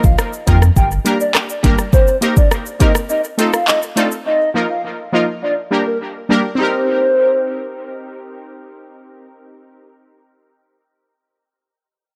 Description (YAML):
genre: dancehall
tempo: 103 BPM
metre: 4/4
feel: straight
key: C minor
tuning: A4 = 440 Hz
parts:
  - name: hollow clarinet-like synth lead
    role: melody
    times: 0.0-8.3 s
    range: Bb4 to G5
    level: -21 LUFS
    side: equal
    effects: chorus, dub echo
  - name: warm sub bass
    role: bass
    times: 0.0-1.8 s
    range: G1 to F2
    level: -16 LUFS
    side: equal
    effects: none
  - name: afro-pop drum kit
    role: drums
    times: 0.0-4.3 s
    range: handclaps, hi-hat, kick drum, rim click, shaker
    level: -17 LUFS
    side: equal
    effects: dub echo
  - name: synth brass stab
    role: accompaniment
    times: 0.5-9.9 s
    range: F3 to Bb4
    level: -21 LUFS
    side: equal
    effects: chorus, dub echo
room: light reverb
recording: echo-heavy mix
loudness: -16 LUFS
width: mono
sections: 0.0-6.6 A section; 6.6-8.9 B section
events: none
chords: 0.0 Bbsus4; 0.8 Gm; 1.9 Cm7; 3.1 F7; 4.3 Bbsus4; 5.4 Gm; 6.6 Cm7